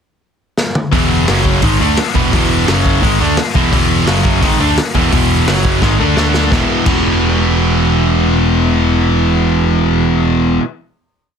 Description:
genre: punk rock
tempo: 171 BPM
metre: 4/4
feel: straight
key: E major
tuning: A4 = 441 Hz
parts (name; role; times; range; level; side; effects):
- raw garage drum kit; drums; 0.6-7.0 s; crash cymbal, hi-hat, kick drum, snare drum, toms; -16 LUFS; equal; none
- distorted electric guitar; riff; 0.9-10.6 s; E2 to D4; -17 LUFS; right 14 dB; distortion
- sludgy distorted guitar; riff; 0.9-10.6 s; E2 to E4; -18 LUFS; equal; overdrive
- tight distorted guitar; riff; 0.9-10.6 s; E2 to D4; -17 LUFS; left 12 dB; distortion
- picked electric bass; bass; 0.9-10.6 s; E1 to D2; -17 LUFS; equal; none
room: little or no reverb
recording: dense, heavily limited modern master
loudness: -11 LUFS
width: side -7 dB against mid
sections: 0.0-0.9 pickup bar; 0.9-6.5 riff; 6.5-9.3 final chord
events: drum fill 0.6-0.9, 5.8-6.5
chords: 0.0 N.C.; 0.9 E5; 1.3 F#5; 1.6 E; 2.7 F#5; 3.0 E; 4.1 F#5; 4.4 E; 5.5 F#5; 5.8 G#5; 6.2 D5; 6.5 E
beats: 0.22 0.57 | 0.92 1.27 1.62 1.97 | 2.32 2.67 3.02 3.37 | 3.72 4.07 4.42 4.77 | 5.12 5.47 5.82 6.17 | 6.52 6.87 7.22 7.57 | 7.93 8.28 8.63 8.98

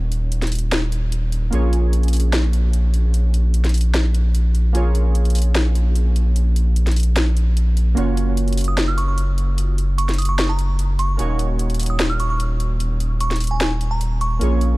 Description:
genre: future bass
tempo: 149 BPM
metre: 4/4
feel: half-time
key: unclear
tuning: A4 = 440 Hz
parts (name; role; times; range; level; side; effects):
- glassy digital keys; accompaniment; 0.0-14.8 s; Bb3 to Db5; -28 LUFS; right 3 dB; chorus, digital delay
- saturated sub bass; bass; 0.0-14.8 s; Eb1 to Bb1; -17 LUFS; equal; none
- trap drum kit; drums; 0.1-14.7 s; hi-hat, snare drum; -26 LUFS; left 1 dB; overdrive, studio reverb
- glassy synth bell; melody; 8.7-14.5 s; Ab5 to F6; -27 LUFS; right 2 dB; chorus, tremolo, digital delay
room: digital ambience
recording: dark, warm production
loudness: -16 LUFS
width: side -20 dB against mid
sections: 0.0-14.8 A section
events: none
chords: 0.0 Ebm7; 1.5 Bbm7; 8.0 Gbmaj7; 11.2 Ebm7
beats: 0.32 0.72 1.12 | 1.53 1.93 2.33 2.73 | 3.14 3.54 3.94 4.35 | 4.75 5.15 5.55 5.96 | 6.36 6.76 7.17 7.57 | 7.97 8.37 8.78 9.18 | 9.58 9.98 10.39 10.79 | 11.19 11.59 12.00 12.40 | 12.80 13.21 13.61 14.01 | 14.41

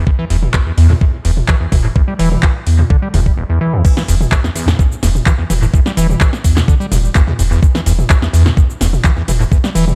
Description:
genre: acid house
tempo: 127 BPM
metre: 4/4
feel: straight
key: E minor pentatonic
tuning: A4 = 439 Hz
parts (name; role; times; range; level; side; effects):
- acid bass, square; riff; 0.0-9.9 s; E1 to G3; -19 LUFS; equal; sidechain pumping, analog delay
- electronic kick drum; drums; 0.1-9.6 s; none; -14 LUFS; equal; none
- warm sub bass; bass; 0.3-9.9 s; E1 to E2; -16 LUFS; equal; sidechain pumping
- electro analog drum machine; drums; 0.3-9.9 s; crash cymbal, handclaps, hi-hat, shaker, snare drum, toms; -22 LUFS; equal; analog delay
room: light reverb, digital ambience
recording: echo-heavy mix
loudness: -13 LUFS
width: mono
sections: 0.0-3.8 A section; 3.8-9.9 B section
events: drop 3.8-9.9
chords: none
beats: | 0.07 0.54 1.01 1.49 | 1.96 2.43 2.90 3.38 | 3.85 4.32 4.79 5.26 | 5.74 6.21 6.68 7.15 | 7.63 8.10 8.57 9.04 | 9.52

